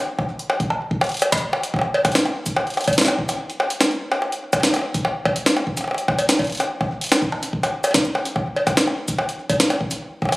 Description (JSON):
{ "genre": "IDM", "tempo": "145 BPM", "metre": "4/4", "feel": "straight", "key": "none", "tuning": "none", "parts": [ { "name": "electronic kick drum", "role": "drums", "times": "0.2-10.3 s", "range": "none", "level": "-27 LUFS", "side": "equal", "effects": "studio reverb" }, { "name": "jungle sampler-style drum kit", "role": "drums", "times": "0.2-10.4 s", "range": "bongos, cowbell, hi-hat, shaker, snare drum", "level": "-19 LUFS", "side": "equal", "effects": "studio reverb, digital delay" } ], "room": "wet echo chamber reverb, RT60 1.4 s, digital ambience", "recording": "recorded on a phone in the room, club reverb, compression", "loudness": "-18 LUFS", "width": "side -21 dB against mid", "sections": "0.0-10.4 A section", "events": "break 3.4-4.2", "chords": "none", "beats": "0.08 0.50 | 0.91 1.32 1.74 2.15 | 2.56 2.98 3.39 3.81 | 4.22 4.63 5.05 5.46 | 5.88 6.29 6.70 7.12 | 7.53 7.94 8.36 8.77 | 9.19 9.60 10.01" }